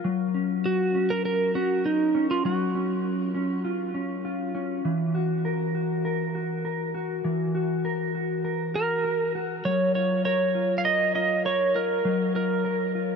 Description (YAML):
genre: dream pop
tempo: 100 BPM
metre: 4/4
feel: straight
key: F# major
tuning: A4 = 440 Hz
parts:
  - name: mellow electric guitar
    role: arpeggios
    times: 0.0-13.2 s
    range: E3 to A#4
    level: -26 LUFS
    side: left 2 dB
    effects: lush chorus, tape echo
  - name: clean lap steel guitar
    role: melody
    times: 0.7-3.6, 8.8-12.9 s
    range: D#4 to E#5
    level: -25 LUFS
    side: right 3 dB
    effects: tape echo
room: moderate huge ambient reverb, RT60 7.6 s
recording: none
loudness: -23 LUFS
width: side -6 dB against mid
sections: 0.0-13.2 A section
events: none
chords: 0.0 F#5; 4.8 Esus2; 9.6 F#maj7